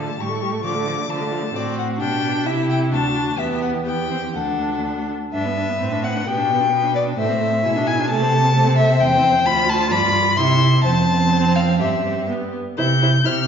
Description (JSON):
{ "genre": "quick classical-period movement for string quartet", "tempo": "130 BPM", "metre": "2/4", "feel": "rubato", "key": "G major, C major from 9.0 s", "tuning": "A4 = 440 Hz", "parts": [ { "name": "rich violin", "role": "melody", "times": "0.0-13.5 s", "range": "G4 to G6", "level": "-26 LUFS", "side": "left 7 dB", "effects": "none" }, { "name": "warm violin", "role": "second line", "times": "0.0-13.3 s", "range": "D4 to C6", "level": "-21 LUFS", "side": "left 3 dB", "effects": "none" }, { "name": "rich viola", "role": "accompaniment", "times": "0.0-13.3 s", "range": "F3 to F4", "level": "-24 LUFS", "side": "right 1 dB", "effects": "none" }, { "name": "rich cello", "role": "bass", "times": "0.0-13.5 s", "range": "D2 to D3", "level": "-21 LUFS", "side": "right 2 dB", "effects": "none" } ], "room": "wet recital hall reverb, RT60 1.4 s", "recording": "heard from further back in the room, nothing above 7.5 kHz", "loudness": "-17 LUFS", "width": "side -7 dB against mid", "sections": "0.0-5.3 A section; 5.3-12.8 B section", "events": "none", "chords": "0.2 A7; 0.7 Dm; 1.6 D7/A; 2.0 G/B; 2.5 C; 2.9 D; 3.4 Em; 4.3 D; 5.3 G; 5.8 D7/A; 6.3 G/B; 7.2 Am; 7.7 E7/B; 8.1 Am/C; 9.0 C/E; 9.5 Dm; 9.9 G7; 10.4 C; 10.8 F; 11.8 C/G; 12.3 G; 12.8 C" }